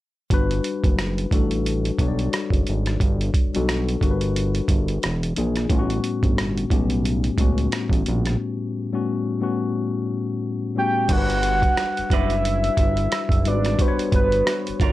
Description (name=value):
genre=R&B, neo-soul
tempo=89 BPM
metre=4/4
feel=swing 58% on 16ths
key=G lydian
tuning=A4 = 443 Hz
part: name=tine electric piano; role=accompaniment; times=0.3-14.9 s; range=A2 to D5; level=-25 LUFS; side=left 4 dB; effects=overdrive, plate reverb
part: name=fat analog bass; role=bass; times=0.3-14.9 s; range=E1 to C#2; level=-23 LUFS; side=right 1 dB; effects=none
part: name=boom bap sampler-style drum kit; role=drums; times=0.3-14.9 s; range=crash cymbal, hi-hat, kick drum, rim click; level=-22 LUFS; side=right 1 dB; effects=none
part: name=soft octave-layered synth lead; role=melody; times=10.8-14.8 s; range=B4 to G5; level=-23 LUFS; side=right 1 dB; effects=chorus, plate reverb
part: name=electric guitar through a small old amp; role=second line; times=11.8-14.9 s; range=F#4 to D5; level=-30 LUFS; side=right 8 dB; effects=spring reverb, plate reverb
room=light reverb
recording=none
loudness=-19 LUFS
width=side -16 dB against mid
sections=0.3-11.1 A section; 11.1-14.9 B section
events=break 8.4-11.1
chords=0.3 Gmaj7; 5.0 E7b9; 5.7 A13; 11.1 Gmaj7